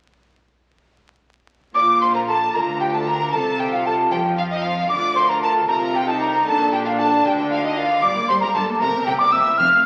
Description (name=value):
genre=classical, baroque-style concerto movement with solo episodes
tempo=76 BPM (dotted quarters)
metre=6/8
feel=straight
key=Bb major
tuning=A4 = 439 Hz
part: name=mellow hollow alto recorder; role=melody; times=1.7-9.9 s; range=Eb5 to F6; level=-21 LUFS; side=equal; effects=none
part: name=clear chamber violin section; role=second line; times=1.7-9.9 s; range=Eb4 to F5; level=-31 LUFS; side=equal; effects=none
part: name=clear chamber violin section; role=melody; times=1.8-9.7 s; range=Eb5 to F6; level=-28 LUFS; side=equal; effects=none
part: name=lute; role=accompaniment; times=1.8-9.9 s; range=F2 to D5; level=-36 LUFS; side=equal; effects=none
part: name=warm studio viola section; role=accompaniment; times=1.8-9.9 s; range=G3 to F4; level=-28 LUFS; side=equal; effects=none
part: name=rich studio double bass section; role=bass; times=1.8-9.7 s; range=F1 to F2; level=-37 LUFS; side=equal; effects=none
part: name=rich symphonic cello section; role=bass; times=1.8-9.7 s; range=F2 to F3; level=-32 LUFS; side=equal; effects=none
room=wet recital hall reverb, RT60 1.4 s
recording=very old 78 rpm record, vinyl crackle, faint mains hum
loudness=-19 LUFS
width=mono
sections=1.8-9.9 A section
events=none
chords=1.8 Bb; 3.3 F5/C; 4.9 Bb/D; 6.5 Bb; 8.0 Gm; 8.8 C7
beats=| 1.75 2.54 | 3.33 4.12 | 4.90 5.68 | 6.47 7.25 | 8.03 8.81 | 9.59